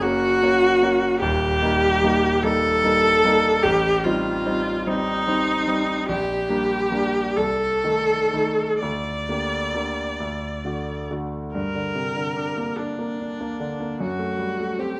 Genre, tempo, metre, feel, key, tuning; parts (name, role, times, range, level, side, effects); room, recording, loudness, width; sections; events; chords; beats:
classical, romantic duo for viola and grand piano; 40-51 BPM (dotted quarters); 6/8; rubato; G minor; A4 = 440 Hz
clear viola; melody; 0.0-15.0 s; D4 to D5; -24 LUFS; equal
bright concert grand piano; accompaniment; 0.0-15.0 s; Eb1 to G4; -27 LUFS; equal
light reverb; close, detailed microphones; -22 LUFS; mono
0.0-11.6 A section; 11.6-15.0 B section
0.0 Gb; 1.2 Eb; 3.6 Am7b5; 6.1 Gm/Bb; 7.4 Adim/C; 8.8 Gm/D; 10.2 D; 11.6 Gm; 14.0 F#dim
0.02 | 1.21 2.42 | 3.64 4.86 | 6.09 7.37 | 8.83 10.21 | 11.55 12.79 | 14.00